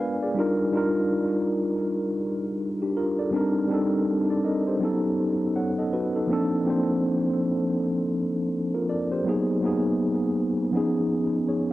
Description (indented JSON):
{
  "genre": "hip hop",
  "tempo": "81 BPM",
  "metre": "4/4",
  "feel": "swing 60% on 16ths",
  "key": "Bb major",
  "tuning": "A4 = 440 Hz",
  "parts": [
    { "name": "mellow tine electric piano", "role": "solo", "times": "0.0-11.7 s", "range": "F3 to Ab5", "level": "-22 LUFS", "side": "equal", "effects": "medium stereo tremolo, low-pass filter, cassette tape, tape echo" }
  ],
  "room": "light reverb",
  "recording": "home recording on cassette",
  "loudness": "-22 LUFS",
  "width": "side -16 dB against mid",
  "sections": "0.0-11.7 A section",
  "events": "none",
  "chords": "0.4 Ebmaj7; 3.3 Cm7; 4.8 B9; 6.3 Bbmaj9; 9.2 Abm7; 10.7 Db9"
}